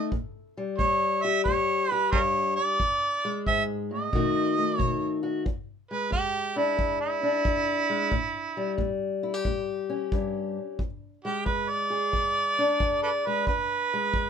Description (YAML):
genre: acoustic country blues, solo or duo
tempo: 90 BPM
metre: 4/4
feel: swing 67% on 8ths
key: unclear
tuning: A4 = 436 Hz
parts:
  - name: mellow harmonica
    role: melody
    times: 0.0-14.3 s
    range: E4 to E5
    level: -26 LUFS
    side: right 3 dB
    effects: none
  - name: fingerpicked steel-string acoustic guitar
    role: accompaniment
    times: 0.0-14.3 s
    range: E2 to G#4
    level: -28 LUFS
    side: left 3 dB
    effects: none
  - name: kick drum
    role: drums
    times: 0.1-14.3 s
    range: none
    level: -31 LUFS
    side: equal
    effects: none
room: light reverb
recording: minimal, uncompressed stereo recording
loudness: -24 LUFS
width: side -7 dB against mid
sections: 0.0-5.5 A section; 5.5-14.3 B section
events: harmonica solo 5.5-14.3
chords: 0.1 A7; 2.8 E7; 4.1 B7; 5.5 E7; 8.1 A7; 10.8 E7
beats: | 0.12 0.79 1.46 2.12 | 2.79 3.46 4.12 4.79 | 5.46 6.13 6.79 7.46 | 8.13 8.80 9.46 10.13 | 10.80 11.47 12.14 12.81 | 13.47 14.14